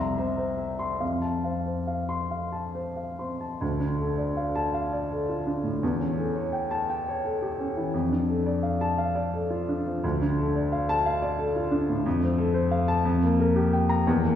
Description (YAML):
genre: classical, romantic character piece for solo piano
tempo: 44-62 BPM (dotted quarters)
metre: 6/8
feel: rubato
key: F major, D minor from 3.6 s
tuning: A4 = 437 Hz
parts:
  - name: warm baby grand piano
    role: solo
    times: 0.0-14.4 s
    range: C2 to C6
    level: -24 LUFS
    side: left 1 dB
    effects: none
room: wet concert hall reverb, RT60 1.9 s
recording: heard from further back in the room, small room ambience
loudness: -24 LUFS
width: side -10 dB against mid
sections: 0.0-3.6 A section; 3.6-14.4 B section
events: none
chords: 0.0 C7; 1.0 F; 3.6 Dm; 5.8 A7/E; 7.9 Dm/F; 10.0 Dm; 12.1 F; 13.0 Gm7/F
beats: | 1.01 2.32 | 3.62 4.75 | 5.82 6.90 | 7.93 8.98 | 10.04 11.06 | 12.05 13.04 | 14.06